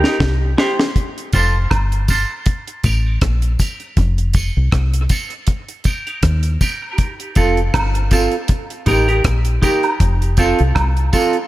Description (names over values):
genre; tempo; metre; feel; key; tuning
dub reggae; 80 BPM; 4/4; swing 56% on 16ths; F mixolydian; A4 = 440 Hz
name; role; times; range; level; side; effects
semi-hollow electric guitar; accompaniment; 0.0-11.4 s; C4 to C5; -20 LUFS; right 2 dB; spring reverb, high-pass filter, dub echo
deep dub fingered electric bass; bass; 0.0-11.1 s; F1 to Eb2; -16 LUFS; equal; none
deep reggae drum kit; drums; 0.0-11.5 s; hi-hat, kick drum, rim click, snare drum; -17 LUFS; equal; none
tambourine and woodblock; percussion; 1.3-11.3 s; none; -26 LUFS; right 3 dB; high-pass filter on perc, dub echo
room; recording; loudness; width
small room ambience; none; -14 LUFS; side -16 dB against mid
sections
1.0-11.5 A section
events
break 0.0-1.0; drum fill 0.0-1.0; filter sweep 0.0-7.0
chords
0.2 C; 1.0 F; 2.5 Eb; 4.0 F; 5.5 Eb; 7.0 F; 8.5 Eb; 10.0 F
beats
0.20 | 0.96 1.71 2.46 3.22 | 3.97 4.73 5.48 6.23 | 6.99 7.74 8.49 9.25 | 10.00 10.76